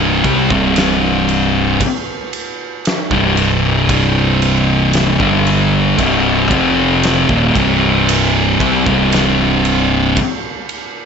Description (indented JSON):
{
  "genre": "stoner and doom metal",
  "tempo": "57 BPM",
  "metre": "4/4",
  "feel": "straight",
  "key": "unclear",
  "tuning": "A4 = 440 Hz",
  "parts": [
    { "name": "thick fuzz guitar", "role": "riff", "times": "0.0-10.2 s", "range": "C2 to G3", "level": "-14 LUFS", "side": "left 9 dB", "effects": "distortion" },
    { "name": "thick fuzz guitar", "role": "riff", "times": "0.0-10.2 s", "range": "C2 to G3", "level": "-15 LUFS", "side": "right 9 dB", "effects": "distortion" },
    { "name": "growling fingered electric bass", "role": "bass", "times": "0.0-10.1 s", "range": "C1 to C2", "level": "-22 LUFS", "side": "equal", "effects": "overdrive" },
    { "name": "big rock drum kit", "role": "drums", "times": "0.2-10.9 s", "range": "kick drum, ride cymbal, snare drum", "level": "-20 LUFS", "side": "right 1 dB", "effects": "none" }
  ],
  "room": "light reverb, small room ambience",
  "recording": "nothing above 7.9 kHz",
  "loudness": "-11 LUFS",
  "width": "side -6 dB against mid",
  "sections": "0.0-11.1 A section",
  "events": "none",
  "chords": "0.0 C5"
}